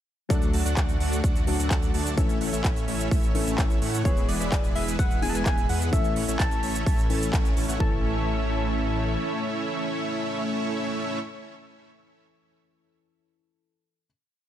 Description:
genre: EDM, festival progressive house.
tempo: 128 BPM.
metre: 4/4.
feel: straight.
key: A major.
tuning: A4 = 440 Hz.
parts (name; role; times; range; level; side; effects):
dark baby grand piano; accompaniment; 0.3-14.1 s; E3 to A4; -34 LUFS; left 5 dB; sidechain pumping, digital delay.
lush unison pad; sustained chords; 0.3-11.2 s; A2 to G#4; -36 LUFS; right 1 dB; chorus, sidechain pumping.
dense compressed supersaw; riff; 0.3-11.2 s; G#3 to A5; -30 LUFS; right 1 dB; sidechain pumping, digital delay.
wide detuned saw bass; bass; 0.3-9.2 s; E1 to A2; -29 LUFS; equal; chorus, tube saturation, sidechain pumping.
big-room dance drum kit; drums; 0.3-7.8 s; handclaps, hi-hat, shaker; -33 LUFS; right 1 dB; none.
electronic kick drum; drums; 0.3-7.9 s; none; -24 LUFS; equal; none.
soft struck synth lead; melody; 4.1-11.2 s; C#5 to A5; -34 LUFS; left 2 dB; chorus, phaser, digital delay.
room: light reverb.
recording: none.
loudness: -23 LUFS.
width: side -11 dB against mid.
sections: 0.3-7.8 drop; 7.8-11.6 final chord.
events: drop 0.3-7.8; band accent 7.3.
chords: 0.3 D; 2.2 A; 4.1 E; 5.9 A.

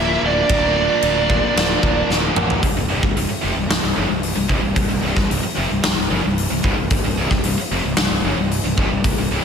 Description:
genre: hard rock.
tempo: 112 BPM.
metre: 4/4.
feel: straight.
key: unclear.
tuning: A4 = 442 Hz.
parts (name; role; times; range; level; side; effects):
bluesy overdriven lead guitar; melody; 0.0-2.1 s; D5 to E5; -20 LUFS; right 4 dB; distortion, slapback echo.
octave-fuzz lead guitar; second line; 0.0-2.1 s; D4 to E4; -28 LUFS; right 1 dB; none.
heavy high-gain guitar; riff; 0.0-9.4 s; C2 to Bb3; -25 LUFS; right 8 dB; distortion.
tight distorted guitar; riff; 0.0-9.4 s; C2 to Bb3; -25 LUFS; left 9 dB; distortion, slapback echo.
tight distorted guitar; riff; 0.0-9.4 s; C2 to Bb4; -26 LUFS; left 1 dB; none.
fuzz fingered electric bass; bass; 0.0-9.4 s; C1 to A1; -24 LUFS; equal; overdrive.
huge arena drum kit; drums; 0.5-9.2 s; crash cymbal, hi-hat, kick drum, snare drum, toms; -20 LUFS; equal; none.
room: moderate lush hall reverb, RT60 1.6 s, small room ambience.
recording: big arena sound.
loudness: -16 LUFS.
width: side -7 dB against mid.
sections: 0.0-2.6 A section; 2.6-9.4 B section.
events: drum fill 2.1-2.6.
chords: 0.0 Bb/D; 2.6 C5.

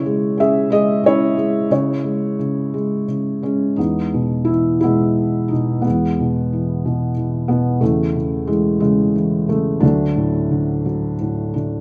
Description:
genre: classical, lyrical solo piano.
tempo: 59 BPM (dotted quarters).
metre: 6/8.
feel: rubato.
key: C# minor, E major from 3.8 s.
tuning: A4 = 440 Hz.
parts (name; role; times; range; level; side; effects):
felt-muted upright piano; solo; 0.0-11.8 s; D2 to E5; -18 LUFS; equal; none.
room: moderate recital hall reverb, RT60 1.4 s.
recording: none.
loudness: -18 LUFS.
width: mono.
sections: 0.0-3.8 A section; 3.8-11.8 B section.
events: none.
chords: 0.0 C#m; 3.8 E; 7.8 Amaj7/E; 9.8 D.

